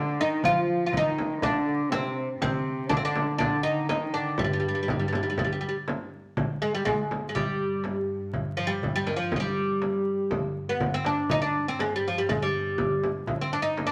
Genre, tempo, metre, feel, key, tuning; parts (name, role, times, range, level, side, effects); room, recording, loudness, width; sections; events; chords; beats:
Arabic maqam ensemble; 122 BPM; 4/4; straight; G maqam hijaz; A4 = 440 Hz
oud; melody; 0.0-13.9 s; Eb3 to F4; -29 LUFS; equal
mellow bass clarinet; second line; 0.0-5.9 s; G2 to F3; -37 LUFS; equal
warm cello; second line; 0.0-5.9 s; G2 to F3; -36 LUFS; equal
darbuka; percussion; 0.3-13.9 s; -38 LUFS; equal
frame drum; percussion; 0.4-13.9 s; -35 LUFS; equal
warm studio cello section; drone; 6.4-13.9 s; G2; -44 LUFS; equal
wet studio reverb, RT60 0.9 s; vinyl crackle; -27 LUFS; mono
0.0-6.4 A section; 6.4-13.9 B section
| 0.43 0.93 1.42 1.92 | 2.41 2.90 3.40 3.89 | 4.38 4.88 5.37 5.87 | 6.36 6.85 7.35 7.84 | 8.34 8.83 9.32 9.82 | 10.31 10.81 11.30 11.79 | 12.29 12.78 13.28 13.77